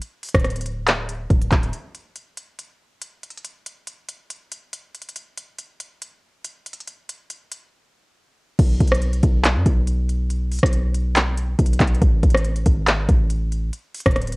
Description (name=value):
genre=hip hop, trap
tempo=140 BPM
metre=4/4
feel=half-time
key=B dorian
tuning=A4 = 439 Hz
part: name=organic electronic drum kit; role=drums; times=0.0-14.4 s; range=crash cymbal, handclaps, hi-hat, kick drum, rim click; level=-19 LUFS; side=equal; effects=overdrive, cassette tape
part: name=hard-hitting 808-style bass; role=bass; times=0.3-1.7, 8.6-14.4 s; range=D1 to F#2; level=-21 LUFS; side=equal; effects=none
room=little or no reverb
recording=home recording on cassette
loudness=-17 LUFS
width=side -28 dB against mid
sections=0.0-1.7 A section; 1.7-8.6 B section; 8.6-14.4 A section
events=drums muted 7.7-8.6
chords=none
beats=| 0.02 0.45 0.87 1.30 | 1.73 2.16 2.59 3.02 | 3.44 3.87 4.30 4.73 | 5.16 5.59 6.02 6.45 | 6.87 7.30 7.73 8.16 | 8.59 9.02 9.45 9.87 | 10.30 10.73 11.16 11.59 | 12.02 12.45 12.87 13.30 | 13.73 14.16